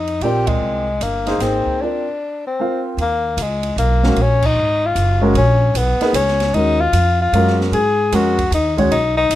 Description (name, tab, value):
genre	modal jazz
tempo	152 BPM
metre	3/4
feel	swing 65% on 8ths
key	Eb minor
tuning	A4 = 440 Hz
part	breathy tenor saxophone	melody	0.0-9.4 s	Ab3 to Ab4	-18 LUFS	left 3 dB	none
part	upright bass	bass	0.0-9.4 s	Gb1 to Ab2	-19 LUFS	right 1 dB	none
part	open jazz drum kit	drums	0.1-9.4 s	crash cymbal, hi-hat, kick drum, ride cymbal, snare drum	-27 LUFS	right 3 dB	none
part	warm grand piano	accompaniment	0.2-8.9 s	Ab3 to F5	-19 LUFS	equal	none
room	light reverb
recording	minimal, uncompressed stereo recording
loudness	-14 LUFS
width	side -14 dB against mid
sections	0.0-3.0 A section; 3.0-9.4 B section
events	band accent 0.4, 4.4; break 1.8-3.0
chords	0.0 Fm9; 1.8 Bb; 3.0 Ebm11; 7.7 Abm11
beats	0.21 | 0.61 1.01 1.40 | 1.80 2.19 2.59 | 2.99 3.38 3.78 | 4.17 4.57 4.96 | 5.36 5.75 6.15 | 6.54 6.94 7.33 | 7.73 8.12 8.52 | 8.91 9.31